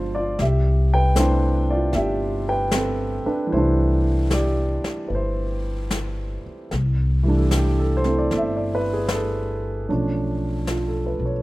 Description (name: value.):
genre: jazz ballad.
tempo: 76 BPM.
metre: 4/4.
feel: swing 67% on 8ths.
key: C major.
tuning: A4 = 440 Hz.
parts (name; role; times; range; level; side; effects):
warm grand piano; accompaniment; 0.0-11.4 s; B2 to G5; -23 LUFS; right 1 dB; none.
upright bass; bass; 0.0-11.4 s; G1 to C2; -22 LUFS; equal; none.
jazz brush drum kit; drums; 0.4-11.4 s; brushed snare drum, hi-hat, snare drum; -29 LUFS; left 2 dB; none.
room: small room ambience.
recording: rough home demo mix.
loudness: -19 LUFS.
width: side -18 dB against mid.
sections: 0.0-6.7 A section; 6.7-11.4 B section.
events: none.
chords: 0.4 C6; 9.9 Bm7b5.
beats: | 0.39 1.17 1.95 2.73 | 3.52 4.31 5.11 5.91 | 6.71 7.51 8.31 9.10 | 9.89 10.67.